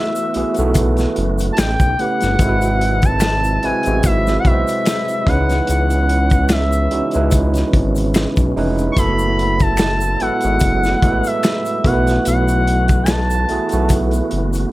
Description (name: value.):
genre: R&B, neo-soul.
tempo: 73 BPM.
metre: 4/4.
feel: swing 56% on 16ths.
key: F# dorian.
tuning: A4 = 440 Hz.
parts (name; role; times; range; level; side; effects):
expressive portamento lead; melody; 0.0-13.9 s; E5 to C#6; -20 LUFS; equal; chorus, slapback echo.
overdriven tine electric piano; accompaniment; 0.0-14.7 s; G#3 to B#4; -21 LUFS; right 3 dB; none.
tonewheel organ; sustained chords; 0.0-14.7 s; A2 to G4; -27 LUFS; equal; chorus vibrato, fast rotary speaker.
crunchy breakbeat drum kit; drums; 0.2-14.7 s; hi-hat, kick drum, snare drum; -18 LUFS; equal; none.
tube shaker and finger snaps; percussion; 0.2-14.7 s; none; -30 LUFS; left 5 dB; none.
smooth synth bass; bass; 0.4-14.7 s; E#1 to C#2; -18 LUFS; equal; none.
room: little or no reverb.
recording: none.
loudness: -14 LUFS.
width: side -17 dB against mid.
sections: 0.0-14.7 A section.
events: none.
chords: 0.0 B7sus4; 1.6 A9; 2.4 G#7alt; 5.3 C#m9; 9.0 F#m11.